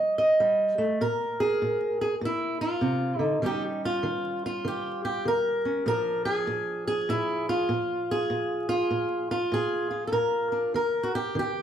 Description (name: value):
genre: acoustic country blues, solo or duo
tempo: 99 BPM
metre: 4/4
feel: swing 63% on 8ths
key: Bb mixolydian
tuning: A4 = 441 Hz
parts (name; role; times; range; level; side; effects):
- fingerpicked swing-style acoustic guitar; solo; 0.0-11.6 s; Bb2 to Eb5; -24 LUFS; right 1 dB; none
room: moderate large studio reverb, RT60 1.1 s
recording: band playing live in one room, vinyl crackle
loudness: -24 LUFS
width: side -9 dB against mid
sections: 0.0-1.0 A section; 1.0-11.6 B section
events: steel-string acoustic guitar solo 0.0-1.0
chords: 0.0 F7; 1.0 Bb7(no3); 3.4 Eb7; 5.9 Bb7; 10.7 Eb